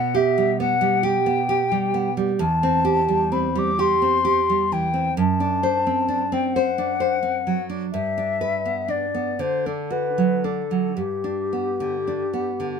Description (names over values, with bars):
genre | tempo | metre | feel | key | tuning
romantic duo for flute and classical guitar | 37-45 BPM (dotted quarters) | 6/8 | rubato | G major | A4 = 439 Hz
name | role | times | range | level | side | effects
mellow hollow silver concert flute | melody | 0.0-12.8 s | G4 to D6 | -22 LUFS | left 6 dB | none
nylon-string guitar | accompaniment | 0.0-12.8 s | E2 to C5 | -22 LUFS | right 4 dB | none
room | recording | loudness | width
light reverb | close, detailed microphones | -19 LUFS | side -6 dB against mid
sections
0.0-12.8 A section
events
none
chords
0.0 G/B; 2.4 C/E; 5.2 D7/F#; 7.9 G; 9.4 D; 11.0 G